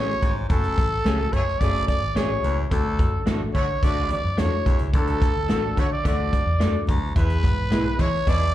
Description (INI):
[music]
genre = uptempo 1960s-style soul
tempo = 108 BPM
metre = 4/4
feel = straight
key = unclear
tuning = A4 = 437 Hz
[part]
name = growling trumpet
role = melody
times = 0.0-8.5 s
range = A4 to D5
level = -26 LUFS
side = right 1 dB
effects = plate reverb, slapback echo
[part]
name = dark upright piano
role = accompaniment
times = 0.0-8.5 s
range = D3 to G#5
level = -31 LUFS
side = left 3 dB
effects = plate reverb, slapback echo
[part]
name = electric guitar through a small old amp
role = stabs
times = 0.0-7.8 s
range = A3 to A4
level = -31 LUFS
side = right 3 dB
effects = plate reverb, slapback echo
[part]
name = vintage muted fingered electric bass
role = bass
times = 0.0-8.5 s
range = F#1 to E3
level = -25 LUFS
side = equal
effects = none
[part]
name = edgy baritone saxophone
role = riff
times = 0.2-7.5 s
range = D2 to G#2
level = -31 LUFS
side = left 2 dB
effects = slapback echo
[part]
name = natural country drum kit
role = drums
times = 0.2-8.4 s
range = hi-hat, kick drum, snare drum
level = -24 LUFS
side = equal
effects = none
[part]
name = congas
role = percussion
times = 0.2-8.4 s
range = none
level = -38 LUFS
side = left 2 dB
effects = none
[part]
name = clear horn section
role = second line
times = 1.1-8.5 s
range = B2 to A4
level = -35 LUFS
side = left 2 dB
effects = plate reverb, slapback echo
[sound]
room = little or no reverb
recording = live gig heard through the venue's PA, club reverb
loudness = -20 LUFS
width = side -13 dB against mid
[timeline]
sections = 0.0-8.5 A section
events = none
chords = 0.0 F#madd9; 2.7 D; 7.2 E